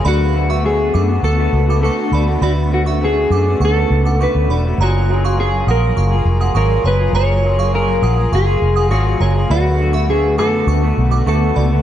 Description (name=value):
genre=indie pop, bedroom pop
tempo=102 BPM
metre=4/4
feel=straight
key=unclear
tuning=A4 = 440 Hz
part: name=glassy synth bell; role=second line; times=0.0-11.7 s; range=C#5 to D#6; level=-25 LUFS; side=right 6 dB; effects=analog chorus, slapback echo
part: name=electric guitar through a small old amp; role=accompaniment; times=0.0-11.8 s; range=D3 to G#4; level=-22 LUFS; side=left 4 dB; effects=analog chorus, warbly pitch drift
part: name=granular cloud pad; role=sustained chords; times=0.0-11.8 s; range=D3 to E#5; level=-25 LUFS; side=right 1 dB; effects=built-in reverb
part: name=vintage muted fingered electric bass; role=bass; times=0.0-11.8 s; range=E1 to F#2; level=-15 LUFS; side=equal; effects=none
part: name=mellow electric guitar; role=melody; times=0.1-11.8 s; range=F#4 to C#5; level=-19 LUFS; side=equal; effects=wide subtle chorus, slapback echo
room=light reverb, digital ambience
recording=dark, warm production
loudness=-13 LUFS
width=side -11 dB against mid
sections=0.0-11.8 A section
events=none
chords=0.1 D6; 4.8 F#maj9; 9.5 D6